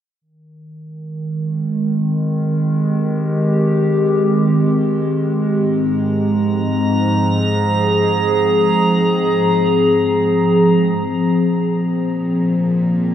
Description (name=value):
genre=ambient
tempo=free time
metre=none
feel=none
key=Ab major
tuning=A4 = 440 Hz
part: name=warbly tape-like pad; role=sustained chords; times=1.0-13.1 s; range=Ab2 to Bb4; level=-15 LUFS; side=equal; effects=chorus, built-in reverb, phaser
part: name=drifting glass-harmonics texture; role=texture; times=6.3-11.0 s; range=Bb5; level=-23 LUFS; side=right 3 dB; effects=chorus, built-in reverb
part: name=clear symphonic cello section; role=bass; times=11.0-13.1 s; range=Bb2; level=-33 LUFS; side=equal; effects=none
room=wet huge ambient reverb, RT60 8.4 s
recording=dark, warm production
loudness=-14 LUFS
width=side -10 dB against mid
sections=0.2-11.0 A section; 11.0-13.1 B section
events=filter sweep on ambient pad 11.0-13.1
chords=0.2 Abmaj7; 5.6 Fm/Ab; 11.0 Bbsus2